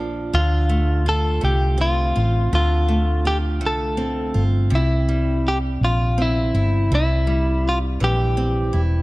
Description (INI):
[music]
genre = six-eight pop ballad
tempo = 55 BPM (dotted quarters)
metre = 6/8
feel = straight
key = D minor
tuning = A4 = 440 Hz
[part]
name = picked steel-string acoustic guitar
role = accompaniment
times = 0.0-9.0 s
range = Bb2 to F4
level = -26 LUFS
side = right 1 dB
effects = none
[part]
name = hollow-body short-scale fingered electric bass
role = bass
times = 0.0-9.0 s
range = E1 to D2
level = -19 LUFS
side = equal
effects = none
[part]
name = direct-recorded clean electric guitar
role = melody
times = 0.3-8.8 s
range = E4 to A4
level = -23 LUFS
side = left 1 dB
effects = none
[sound]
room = studio reverb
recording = dark, warm production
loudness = -17 LUFS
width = side -20 dB against mid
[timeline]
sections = 0.3-9.0 A section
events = none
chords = 0.3 Dm7; 4.7 C